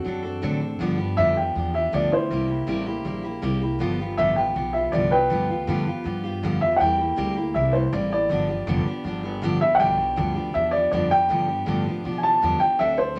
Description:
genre	rockabilly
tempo	160 BPM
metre	4/4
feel	straight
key	G mixolydian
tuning	A4 = 439 Hz
part	dark upright piano	melody	0.0-13.2 s	E4 to A5	-24 LUFS	equal	none
part	picked steel-string acoustic guitar	accompaniment	0.0-13.2 s	G2 to A4	-29 LUFS	equal	none
part	upright bass	bass	0.0-13.2 s	F1 to B2	-32 LUFS	equal	none
room	moderate studio reverb, RT60 0.7 s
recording	none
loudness	-23 LUFS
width	mono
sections	0.8-13.2 A section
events	upright piano solo 0.8-13.2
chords	0.0 D7; 0.8 G7; 2.3 C7; 3.8 G7; 6.8 C7; 8.3 G7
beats	0.05 0.42 | 0.80 1.17 1.55 1.92 | 2.30 2.67 3.05 3.42 | 3.80 4.17 4.55 4.92 | 5.30 5.67 6.05 6.42 | 6.80 7.17 7.55 7.92 | 8.30 8.67 9.05 9.42 | 9.80 10.17 10.55 10.92 | 11.30 11.67 12.05 12.42 | 12.80 13.17

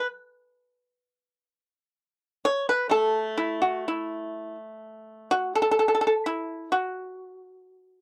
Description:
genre	chinese traditional, Chinese solo plucked strings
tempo	64 BPM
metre	2/4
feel	uneven beats, rubato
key	unclear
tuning	A4 = 440 Hz
part	pipa	solo	0.0-8.0 s	F#3 to C#5	-27 LUFS	equal	none
room	light reverb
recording	dry, close 1970s-style studio recording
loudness	-26 LUFS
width	mono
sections	0.0-4.8 A section; 4.8-8.0 B section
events	none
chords	none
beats	0.18 | 1.07 1.99 | 2.91 3.85 | 4.82 5.77 | 6.71 7.61

